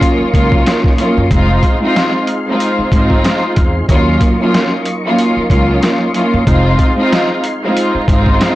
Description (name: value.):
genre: hip hop, boom-bap hip-hop.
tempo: 93 BPM.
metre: 4/4.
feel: swing 57% on 16ths.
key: F phrygian.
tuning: A4 = 442 Hz.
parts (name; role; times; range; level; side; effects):
dark symphonic string section; accompaniment; 0.0-8.6 s; Gb3 to F4; -13 LUFS; equal; high-pass filter, low-pass filter.
tonewheel organ; sustained chords; 0.0-8.6 s; Eb4 to Db6; -24 LUFS; equal; chorus vibrato, slow rotary speaker, high-pass filter, low-pass filter.
boom bap sampler-style drum kit; drums; 0.0-8.6 s; hi-hat, kick drum, snare drum; -14 LUFS; equal; vintage 12-bit sampler grit.
upright bass; bass; 0.2-8.3 s; F1 to Gb2; -16 LUFS; equal; tube saturation.
room: light reverb.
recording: blown-out, overdriven recording, vinyl crackle, overdrive.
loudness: -10 LUFS.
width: side -16 dB against mid.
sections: 0.0-8.6 A section.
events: none.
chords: 0.0 Ebm7; 1.3 Fm7; 3.9 Ebm7; 6.5 Fm7.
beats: 0.02 0.66 | 1.31 1.95 2.60 3.24 | 3.89 4.54 5.18 5.83 | 6.47 7.12 7.76 8.41.